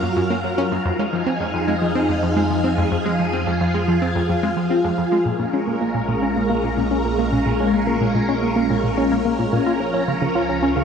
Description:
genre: ambient, sequencer-driven space music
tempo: 109 BPM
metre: 4/4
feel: straight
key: Bb minor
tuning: A4 = 438 Hz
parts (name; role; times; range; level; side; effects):
- phased string machine; sustained chords; 0.0-10.8 s; F3 to Bb4; -21 LUFS; equal; ensemble chorus, phaser
- tight sequenced synth; riff; 0.0-10.8 s; F2 to F4; -22 LUFS; equal; chorus, tape echo
- analog drone; bass; 0.0-10.8 s; Bb1 to Gb2; -28 LUFS; equal; chorus, tube saturation
- wind-like tuned noise texture; texture; 0.0-10.8 s; F4 to F5; -29 LUFS; right 1 dB; built-in reverb
room: wet plate reverb, RT60 2.7 s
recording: echo-heavy mix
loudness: -18 LUFS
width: side -7 dB against mid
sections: 0.0-10.8 A section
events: none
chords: 0.0 Gbmaj7; 0.9 Fm7; 5.3 Bbm7; 9.7 Db6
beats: 0.30 | 0.85 1.41 1.96 2.51 | 3.06 3.61 4.16 4.71 | 5.26 5.81 6.36 6.91 | 7.46 8.01 8.56 9.11 | 9.66 10.21 10.76

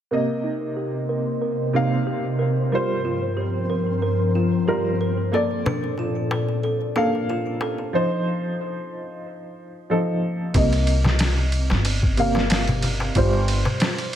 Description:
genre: trip hop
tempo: 92 BPM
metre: 4/4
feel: swing 54% on 16ths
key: C dorian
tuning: A4 = 440 Hz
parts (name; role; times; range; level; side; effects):
- dark upright piano; accompaniment; 0.1-14.2 s; C3 to F5; -24 LUFS; right 1 dB; tremolo, low-pass filter, tape echo
- warbly tape-like pad; sustained chords; 0.7-7.9 s; G2 to Eb5; -24 LUFS; left 1 dB; chorus, built-in reverb, phaser
- music box; arpeggios; 0.1-7.9 s; D4 to Bb4; -28 LUFS; right 2 dB; vintage 12-bit sampler grit, low-pass filter, ping-pong delay
- flickering grainy texture; texture; 0.7-8.0 s; C4 to C5; -34 LUFS; left 1 dB; built-in reverb
- darbuka; percussion; 5.3-14.1 s; none; -28 LUFS; left 2 dB; none
- upright bass; bass; 10.5-13.6 s; G1 to C2; -22 LUFS; equal; none
- trip hop sampler-style drum kit; drums; 10.5-14.2 s; kick drum, ride cymbal, snare drum; -23 LUFS; equal; none
room: light reverb, studio reverb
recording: none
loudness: -20 LUFS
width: side -10 dB against mid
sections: 0.1-10.6 A section; 10.6-14.2 B section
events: filter sweep on ambient pad 0.1-10.6; filter sweep on music box 0.1-10.6; filter sweep on upright piano 10.6-14.2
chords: 0.1 Cm7; 2.7 Gm7; 5.3 Bbmaj7; 7.9 F7; 10.6 Cm7; 13.2 G7(no3)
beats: | 0.12 0.77 1.42 2.07 | 2.73 3.38 4.03 4.68 | 5.33 5.99 6.64 7.29 | 7.94 8.60 9.25 9.90 | 10.55 11.21 11.86 12.51 | 13.16 13.81

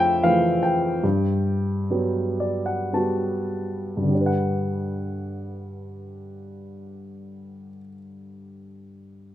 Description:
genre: classical, lyrical solo piano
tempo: 48-80 BPM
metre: 3/4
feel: rubato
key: G major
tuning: A4 = 440 Hz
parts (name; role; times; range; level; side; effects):
- warm grand piano; solo; 0.0-9.3 s; F2 to A5; -23 LUFS; equal; none
room: moderate recital hall reverb, RT60 1.5 s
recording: close, detailed microphones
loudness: -21 LUFS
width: side -12 dB against mid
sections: 0.0-4.1 A section; 4.1-9.3 B section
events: slowing down 0.0-4.1; grand piano fill 1.9-4.1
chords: 0.0 Fmaj7; 1.0 Gmaj7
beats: 0.24 | 1.04 1.92 2.94 | 4.12 5.33 6.50 | 7.66 8.87

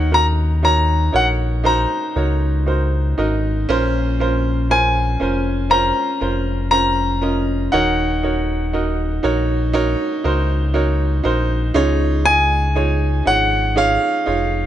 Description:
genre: pop ballad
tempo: 59 BPM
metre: 4/4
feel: straight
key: unclear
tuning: A4 = 440 Hz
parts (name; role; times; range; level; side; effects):
- clear concert grand piano; melody; 0.0-14.7 s; F5 to Bb5; -18 LUFS; left 1 dB; none
- warm upright piano; accompaniment; 0.0-14.7 s; Bb2 to Eb5; -20 LUFS; right 2 dB; none
- sub bass with octave; bass; 0.0-14.7 s; Eb1 to Eb2; -19 LUFS; left 1 dB; none
room: light reverb, small room ambience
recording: nothing above 10.5 kHz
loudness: -15 LUFS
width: side -11 dB against mid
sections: 0.0-14.7 A section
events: none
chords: 0.0 Ebm7; 3.7 Bbmadd9; 7.7 Ebm7; 11.8 Dbadd9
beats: 0.64 1.65 2.67 | 3.70 4.71 5.72 6.72 | 7.74 8.74 9.75 10.75 | 11.76 12.76 13.77

